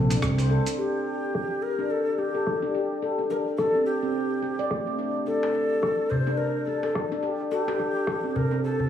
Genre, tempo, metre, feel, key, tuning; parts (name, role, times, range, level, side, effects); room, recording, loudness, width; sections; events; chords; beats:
organic downtempo; 107 BPM; 4/4; swing 58% on 16ths; A4 = 444 Hz
handpan; arpeggios; 0.0-8.6 s; A3 to D5; -28 LUFS; equal; low-pass filter, digital delay
fretless electric bass; bass; 0.0-0.6 s; Bb1 to C2; -22 LUFS; equal; tube saturation
dusty soul sampler-style drum kit; drums; 0.1-8.9 s; hi-hat, rim click, shaker; -33 LUFS; equal; overdrive, low-pass filter on hats, low-pass filter on perc, low-pass filter on snare
darbuka; percussion; 0.1-0.6, 5.4-8.9 s; -29 LUFS; equal
mellow Native American-style cedar flute; melody; 0.8-8.9 s; G4 to C5; -28 LUFS; left 1 dB; digital delay
quartz singing bowl; texture; 0.8-8.9 s; G4; -37 LUFS; left 9 dB
moderate lush hall reverb, RT60 2.8 s; small room reverb; -24 LUFS; side -9 dB against mid
0.8-8.9 A section
0.0 Bbmaj9; 0.8 Csus2 (rootless)
0.22 | 0.79 1.34 1.91 2.47 | 3.03 3.59 4.15 4.71 | 5.27 5.83 6.39 6.95 | 7.51 8.07 8.63